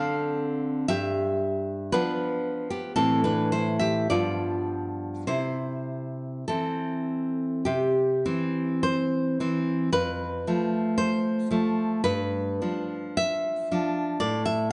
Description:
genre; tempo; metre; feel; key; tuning
romantic piece for solo classical guitar; 50-60 BPM; 2/4; rubato; C major; A4 = 440 Hz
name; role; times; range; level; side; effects
nylon-string guitar; solo; 0.0-14.7 s; F2 to F5; -27 LUFS; equal; none
room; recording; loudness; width
moderate recital hall reverb, RT60 1.5 s; nothing above 10.4 kHz; -27 LUFS; mono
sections
0.0-7.7 A section; 7.7-14.7 B section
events
none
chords
0.0 Dm7; 0.9 G7; 3.0 Am; 4.1 G7; 5.3 C; 9.9 F; 12.0 G7; 14.2 A5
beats
| 0.89 1.93 | 2.98 4.11 | 5.29 6.48 | 7.66 8.84 | 9.93 10.98 | 12.05 13.19 | 14.22

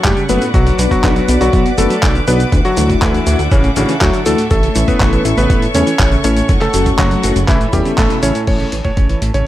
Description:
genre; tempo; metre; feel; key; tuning
italo disco; 121 BPM; 4/4; straight; unclear; A4 = 441 Hz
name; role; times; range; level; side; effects
bright electric grand piano; melody; 0.0-9.5 s; C#3 to C#5; -18 LUFS; left 1 dB; vintage 12-bit sampler grit, digital delay
warm studio string section; sustained chords; 0.0-9.5 s; E3 to D6; -23 LUFS; equal; low-pass filter
direct-recorded clean electric guitar; arpeggios; 0.0-9.4 s; A2 to F#3; -22 LUFS; right 5 dB; vintage 12-bit sampler grit, low-pass filter, digital delay
chorused synth bass; bass; 0.0-9.4 s; F#1 to E2; -17 LUFS; equal; tube saturation
dusty soul sampler-style drum kit; drums; 0.0-9.4 s; cabasa, crash cymbal, handclaps, hi-hat; -22 LUFS; equal; overdrive
electronic kick drum; drums; 0.0-9.1 s; none; -15 LUFS; equal; overdrive
mellow tine electric piano; stabs; 0.3-8.7 s; A3 to B4; -20 LUFS; left 4 dB; fast stereo tremolo
room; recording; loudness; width
light reverb, digital ambience; none; -11 LUFS; side -14 dB against mid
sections
0.0-8.5 A section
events
band accent 8.0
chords
0.0 F#m; 0.5 Bm; 2.5 Dadd9; 4.5 A; 6.5 F#m; 7.5 Aadd9; 8.5 A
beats
0.05 | 0.54 1.04 1.53 2.03 | 2.52 3.02 3.52 4.01 | 4.51 5.00 5.50 6.00 | 6.49 6.99 7.48 7.98 | 8.47 8.97 9.47

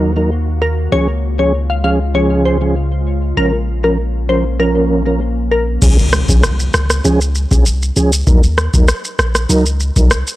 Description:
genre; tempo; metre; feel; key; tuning
dancehall; 98 BPM; 4/4; straight; Db major; A4 = 440 Hz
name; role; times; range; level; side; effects
glassy wavetable pluck; melody; 0.0-5.7 s; Bb4 to F5; -19 LUFS; left 2 dB; chorus, tape echo
mellow tonewheel organ; accompaniment; 0.0-10.1 s; F3 to Bb4; -16 LUFS; right 2 dB; chorus vibrato, stopped rotary speaker, sidechain pumping
glassy FM pad; sustained chords; 0.0-5.8 s; Db3 to Gb4; -24 LUFS; left 1 dB; ensemble chorus, built-in reverb, sidechain pumping
punchy sub bass; bass; 0.0-10.2 s; Bb1 to Eb2; -16 LUFS; equal; none
booming analog drum machine; drums; 5.8-10.4 s; crash cymbal, kick drum, rim click, shaker; -13 LUFS; equal; none
impact; sound effects; 5.8-8.3 s; none; -24 LUFS; equal; none
room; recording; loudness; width
digital ambience; dry, gritty hardware recording, transformer saturation; -12 LUFS; side -16 dB against mid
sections
0.0-5.8 A section; 5.8-10.4 B section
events
impact 5.8-8.3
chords
0.0 Ebm; 0.9 Db; 3.4 Bbm; 5.8 Db; 8.3 Ebm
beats
0.31 | 0.92 1.54 2.15 2.76 | 3.37 3.98 4.60 5.21 | 5.82 6.43 7.05 7.66 | 8.27 8.88 9.49 10.11

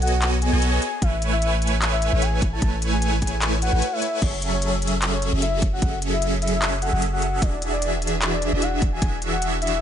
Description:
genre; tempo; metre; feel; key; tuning
future bass; 150 BPM; 4/4; swing 54% on 16ths, half-time; F# minor; A4 = 441 Hz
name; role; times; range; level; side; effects
soft octave-layered synth lead; melody; 0.0-9.8 s; C#5 to A5; -28 LUFS; left 3 dB; chorus, tremolo, sidechain pumping, digital delay
supersaw chords; riff; 0.0-9.8 s; E3 to G#5; -25 LUFS; right 1 dB; phaser, sidechain pumping
long sustained 808-style bass; bass; 0.0-9.8 s; E1 to B1; -24 LUFS; equal; sidechain pumping
trap drum kit; drums; 0.0-9.8 s; crash cymbal, handclaps, hi-hat; -27 LUFS; left 1 dB; studio reverb
electronic kick drum; drums; 1.0-9.1 s; none; -22 LUFS; equal; studio reverb
room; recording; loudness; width
digital ambience; nothing above 10.4 kHz; -20 LUFS; side -9 dB against mid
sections
0.0-9.8 A section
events
break 3.8-4.2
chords
0.0 B13; 0.8 Amaj7; 4.2 F#m7; 7.4 E9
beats
0.22 0.62 | 1.02 1.42 1.82 2.22 | 2.62 3.02 3.42 3.82 | 4.22 4.62 5.02 5.42 | 5.82 6.22 6.62 7.02 | 7.42 7.82 8.22 8.62 | 9.02 9.42

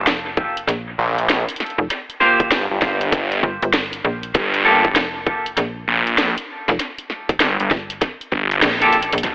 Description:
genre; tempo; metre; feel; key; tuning
glitch hop; 98 BPM; 4/4; swing 63% on 16ths; G minor; A4 = 440 Hz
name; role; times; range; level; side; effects
phased detuned saw bass; bass; 0.0-8.6 s; G1 to Bb1; -18 LUFS; equal; phaser
slap-like FM bass; bass; 0.1-9.2 s; F1 to Bb1; -22 LUFS; equal; none
drum and bass drum kit; drums; 0.1-9.3 s; hi-hat, snare drum; -21 LUFS; equal; dub echo
electronic kick drum; drums; 0.4-8.5 s; none; -19 LUFS; equal; none
clean electric guitar; stabs; 2.2-4.9, 8.8-9.0 s; Bb3 to C5; -20 LUFS; equal; sidechain pumping, low-pass filter, dub echo
impact; sound effects; 9.2-9.3 s; none; -21 LUFS; equal; none
room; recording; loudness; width
moderate plate reverb, RT60 2.0 s; echo-heavy mix, telephone sound; -16 LUFS; side -20 dB against mid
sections
0.0-9.2 A section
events
band accent 8.6-8.9; drum fill 8.9-9.2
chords
0.0 Gm7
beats
0.06 0.67 1.28 | 1.90 2.51 3.12 3.73 | 4.35 4.96 5.57 6.18 | 6.79 7.41 8.02 8.63 | 9.24

